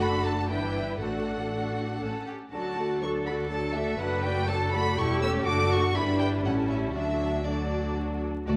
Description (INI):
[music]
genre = quick classical-period movement for string orchestra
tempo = 121 BPM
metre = 3/4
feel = straight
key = D major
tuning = A4 = 440 Hz
[part]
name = rich chamber violin section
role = melody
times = 0.0-8.6 s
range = D5 to E6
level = -35 LUFS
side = equal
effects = none
[part]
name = rich chamber violin section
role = second line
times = 0.0-8.6 s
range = E4 to D5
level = -36 LUFS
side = equal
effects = none
[part]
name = rich studio viola section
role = accompaniment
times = 0.0-8.6 s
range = E3 to F#4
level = -34 LUFS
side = equal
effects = none
[part]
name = rich chamber double bass section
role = bass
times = 0.0-8.6 s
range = E1 to D2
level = -34 LUFS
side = equal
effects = none
[part]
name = rich studio cello section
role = bass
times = 0.0-8.6 s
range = A3 to B4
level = -35 LUFS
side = equal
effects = none
[sound]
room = wet recital hall reverb, RT60 1.4 s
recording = vinyl crackle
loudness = -28 LUFS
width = mono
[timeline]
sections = 0.0-8.5 A section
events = none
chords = 0.0 D/F#; 0.5 Em7/G; 1.0 D/A; 2.0 A; 2.5 D; 4.0 D/F#; 5.0 A7/E; 5.5 D/F#; 6.0 Em7/G; 6.4 A7; 7.0 D